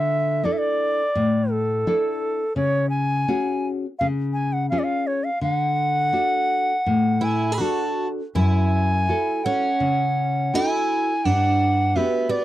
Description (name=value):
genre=fado-style ballad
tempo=84 BPM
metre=4/4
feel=rubato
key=unclear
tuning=A4 = 440 Hz
part: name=bright reedy bansuri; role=melody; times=0.0-12.4 s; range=A4 to B5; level=-22 LUFS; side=equal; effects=none
part: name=nylon-string guitar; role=accompaniment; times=0.0-12.4 s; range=F#2 to B4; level=-23 LUFS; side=left 1 dB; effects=none
part: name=picked twelve-string acoustic guitar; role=second line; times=7.2-12.4 s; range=B3 to G#4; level=-26 LUFS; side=right 5 dB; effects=none
room=light reverb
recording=dry, close 1970s-style studio recording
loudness=-19 LUFS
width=side -14 dB against mid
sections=0.0-12.4 A section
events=none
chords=0.0 Dsus2; 2.6 C#sus4; 4.0 C#; 5.4 D; 8.4 F#m7; 11.2 Gmaj7